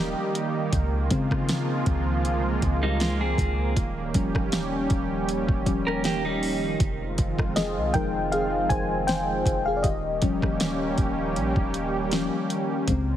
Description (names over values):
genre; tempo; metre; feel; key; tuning
contemporary R&B; 79 BPM; 4/4; swing 54% on 16ths; unclear; A4 = 439 Hz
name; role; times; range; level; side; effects
mellow FM electric piano; accompaniment; 0.0-13.2 s; Db3 to Ab5; -28 LUFS; left 3 dB; chorus
warm analog pad; sustained chords; 0.0-13.2 s; Bb2 to G4; -28 LUFS; right 3 dB; chorus
soft 808-style bass; bass; 0.0-13.2 s; Eb1 to Db3; -30 LUFS; equal; none
smooth R&B drum kit; drums; 0.4-13.1 s; hi-hat, kick drum, rim click, snare drum; -27 LUFS; equal; overdrive
clean electric guitar; arpeggios; 2.8-6.8 s; G3 to Bb4; -29 LUFS; right 1 dB; spring reverb, ping-pong delay
room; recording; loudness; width
light reverb, digital ambience; heavily compressed radio sound; -23 LUFS; side -11 dB against mid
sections
0.0-13.2 A section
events
FM electric piano solo 0.0-13.2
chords
0.0 Eb7; 0.7 Bbm7/Db; 3.8 Eb7; 6.8 Fm7; 9.8 Eb7